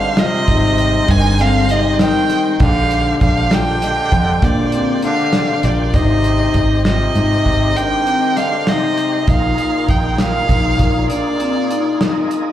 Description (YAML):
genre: progressive instrumental, band music in an uneven meter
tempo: 198 BPM (eighths)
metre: 11/8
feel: straight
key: Ab lydian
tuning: A4 = 440 Hz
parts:
  - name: warm violin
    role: melody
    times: 0.0-12.3 s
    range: D5 to Ab5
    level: -19 LUFS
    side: right 2 dB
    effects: slapback echo, digital delay
  - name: bright trombone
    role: second line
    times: 0.0-12.3 s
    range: Bb2 to Eb3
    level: -24 LUFS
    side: left 2 dB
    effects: slapback echo
  - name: tonewheel organ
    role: accompaniment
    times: 0.0-12.5 s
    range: Bb2 to G5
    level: -24 LUFS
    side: equal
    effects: chorus vibrato, fast rotary speaker, slapback echo
  - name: vibraphone with soft mallets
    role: arpeggios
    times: 0.0-12.5 s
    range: C4 to Eb5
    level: -20 LUFS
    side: left 3 dB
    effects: slapback echo, digital delay
  - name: warm soul drum kit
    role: drums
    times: 0.2-12.5 s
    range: hi-hat, kick drum, snare drum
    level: -18 LUFS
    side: equal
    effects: none
  - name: fingered electric bass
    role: bass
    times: 0.5-11.1 s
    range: G1 to Bb2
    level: -17 LUFS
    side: equal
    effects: none
room: light reverb, small room ambience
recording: live gig heard through the venue's PA, club reverb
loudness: -13 LUFS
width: side -11 dB against mid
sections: 0.0-5.9 A section; 5.9-12.5 B section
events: tonewheel organ fill 5.0-5.9, 11.7-12.5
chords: 0.0 Abmaj7; 2.6 Bb13; 5.9 Abmaj7; 9.3 Bb7sus4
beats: 0.18 0.48 0.78 1.09 1.39 1.69 2.00 2.30 | 2.60 2.91 3.21 3.52 3.82 4.12 4.43 4.73 5.03 5.34 5.64 | 5.94 6.25 6.55 6.85 7.16 7.46 7.76 8.07 8.37 8.68 8.98 | 9.28 9.58 9.89 10.19 10.49 10.80 11.10 11.40 11.71 12.01 12.31